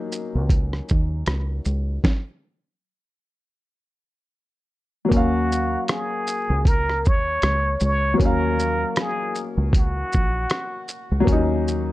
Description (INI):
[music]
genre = lo-fi hip hop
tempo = 78 BPM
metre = 4/4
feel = swing 58% on 16ths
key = Eb minor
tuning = A4 = 440 Hz
[part]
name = felt-muted upright piano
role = accompaniment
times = 0.0-11.9 s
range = Gb3 to F5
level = -24 LUFS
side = left 2 dB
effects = low-pass filter
[part]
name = lo-fi sampler-style drum kit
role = drums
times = 0.1-11.9 s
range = hi-hat, kick drum, rim click, shaker, snare drum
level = -20 LUFS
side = equal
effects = none
[part]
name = deep dub fingered electric bass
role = bass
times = 0.4-11.9 s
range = Bb1 to Eb2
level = -24 LUFS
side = equal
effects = none
[part]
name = trumpet with plunger mute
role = melody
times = 5.1-10.9 s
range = Gb4 to Db5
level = -25 LUFS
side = equal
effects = low-pass filter
[sound]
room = light reverb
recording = dark, warm production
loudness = -19 LUFS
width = side -17 dB against mid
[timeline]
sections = 0.0-5.1 A section; 5.1-11.9 B section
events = stop 2.0-5.1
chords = 0.0 Ebm9